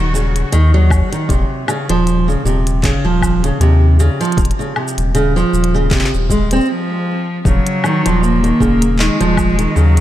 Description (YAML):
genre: folktronica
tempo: 78 BPM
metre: 4/4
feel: swing 56% on 16ths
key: Eb dorian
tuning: A4 = 442 Hz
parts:
  - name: clear cello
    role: melody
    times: 0.0-0.5, 6.7-10.0 s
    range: F3 to Gb4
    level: -18 LUFS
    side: left 1 dB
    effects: diffuse ambient delay
  - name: fingerpicked steel-string acoustic guitar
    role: arpeggios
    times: 0.0-10.0 s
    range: C3 to C4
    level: -16 LUFS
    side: right 2 dB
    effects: vintage 12-bit sampler grit, low-pass filter, diffuse ambient delay
  - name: warm sub bass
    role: bass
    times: 0.0-10.0 s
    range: Eb1 to Eb2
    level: -14 LUFS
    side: equal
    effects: none
  - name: organic electronic drum kit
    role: drums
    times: 0.2-10.0 s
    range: handclaps, hi-hat, shaker, woodblock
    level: -24 LUFS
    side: left 2 dB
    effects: none
  - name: electronic kick drum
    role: drums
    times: 0.9-9.5 s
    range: none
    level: -18 LUFS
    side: equal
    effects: none
room: light reverb, digital ambience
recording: none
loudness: -12 LUFS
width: side -13 dB against mid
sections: 0.0-7.5 A section; 7.5-10.0 A section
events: break 6.7-7.5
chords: 0.0 Ebm7; 1.3 Dbmaj9/Eb; 4.4 Dbmaj7/Eb; 7.5 Ebm9